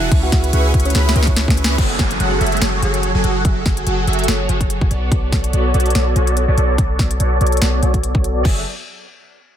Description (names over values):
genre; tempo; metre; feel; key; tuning
future bass; 144 BPM; 4/4; swing 55% on 16ths, half-time; F# minor; A4 = 440 Hz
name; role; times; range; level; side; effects
supersaw chords; riff; 0.0-8.6 s; F#3 to C#6; -20 LUFS; right 1 dB; wide subtle chorus, sidechain pumping, low-pass filter, digital delay
warm 808-style bass; bass; 0.0-8.6 s; F#1 to C#2; -17 LUFS; equal; sidechain pumping
electronic kick drum; drums; 0.1-8.5 s; none; -17 LUFS; equal; none
trap drum kit; drums; 0.1-8.5 s; crash cymbal, hi-hat, snare drum; -23 LUFS; left 1 dB; none
buzzing kalimba; melody; 0.2-1.7 s; C#4 to F#5; -28 LUFS; right 2 dB; sidechain pumping, digital delay
downlifter; sound effects; 1.8-5.1 s; none; -26 LUFS; right 2 dB; none
room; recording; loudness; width
light reverb; none; -14 LUFS; side -10 dB against mid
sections
0.0-1.8 A section; 1.8-8.4 B section; 8.4-9.6 C section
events
drop 0.0-1.8; drum fill 0.9-1.8; band accent 1.6; filter sweep on supersaw synth 1.8-8.4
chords
0.1 C#m7; 1.8 F#m7; 4.9 Bm9; 8.4 F#m7